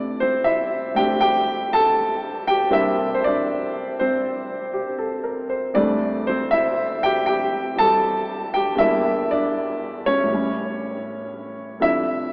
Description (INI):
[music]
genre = solo jazz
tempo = 79 BPM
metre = 4/4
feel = swing 68% on 8ths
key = C major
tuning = A4 = 440 Hz
[part]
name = warm upright piano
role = solo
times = 0.0-12.3 s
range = D2 to A5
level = -19 LUFS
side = equal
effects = none
[sound]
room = wet cathedral reverb, RT60 6.2 s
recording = recorded in a church or concert hall, AM radio sound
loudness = -18 LUFS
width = side -34 dB against mid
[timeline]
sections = 0.0-12.3 A section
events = none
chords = 0.0 C69; 2.7 C9; 5.7 Fmaj9; 8.8 Em7b5; 10.3 A7; 11.8 Dm9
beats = 0.45 1.21 1.96 | 2.72 3.47 4.23 4.99 | 5.74 6.50 7.25 8.01 | 8.77 9.53 10.28 11.04 | 11.80